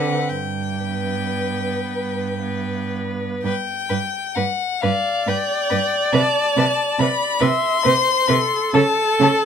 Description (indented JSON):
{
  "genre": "classical, slow romantic movement for string quartet",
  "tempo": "37-47 BPM (dotted quarters)",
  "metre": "6/8",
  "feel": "rubato",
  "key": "G major",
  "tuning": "A4 = 437 Hz",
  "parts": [
    { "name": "rich violin", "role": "melody", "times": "0.0-9.4 s", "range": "F5 to C6", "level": "-22 LUFS", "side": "left 7 dB", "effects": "none" },
    { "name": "warm violin", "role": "second line", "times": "0.0-9.3 s", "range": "A4 to B4", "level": "-25 LUFS", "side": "left 3 dB", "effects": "none" },
    { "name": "rich viola", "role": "accompaniment", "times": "0.0-9.4 s", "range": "B3 to E5", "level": "-22 LUFS", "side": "right 1 dB", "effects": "none" },
    { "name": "rich cello", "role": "bass", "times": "0.0-9.3 s", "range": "G2 to D3", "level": "-22 LUFS", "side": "right 5 dB", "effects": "none" }
  ],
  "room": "light reverb",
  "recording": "minimal, uncompressed stereo recording",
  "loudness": "-18 LUFS",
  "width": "side -7 dB against mid",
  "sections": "0.0-3.4 A section; 3.4-9.4 B section",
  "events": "none",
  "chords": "0.3 G; 3.4 G5; 6.1 Cmaj13; 8.8 N.C."
}